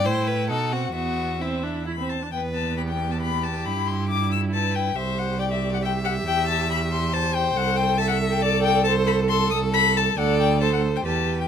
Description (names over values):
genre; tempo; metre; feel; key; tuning
quick classical-period movement for string quartet; 137 BPM; 3/4; straight; E minor; A4 = 440 Hz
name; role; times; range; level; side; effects
clear violin; melody; 0.0-11.5 s; E5 to E6; -25 LUFS; left 8 dB; none
clear violin; second line; 0.0-11.5 s; E4 to E5; -28 LUFS; left 3 dB; none
rich viola; accompaniment; 0.0-11.5 s; B3 to A4; -28 LUFS; right 6 dB; none
clear cello; bass; 0.0-11.5 s; C2 to B2; -25 LUFS; right 3 dB; none
room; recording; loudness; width
light reverb; close, detailed microphones; -20 LUFS; side -8 dB against mid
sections
0.0-2.3 A section; 2.3-11.5 A section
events
none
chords
0.0 Am; 0.5 B7; 0.9 E5; 2.3 Em; 3.7 Em/G; 5.0 C; 6.3 C/E; 7.6 Am/C; 10.2 D5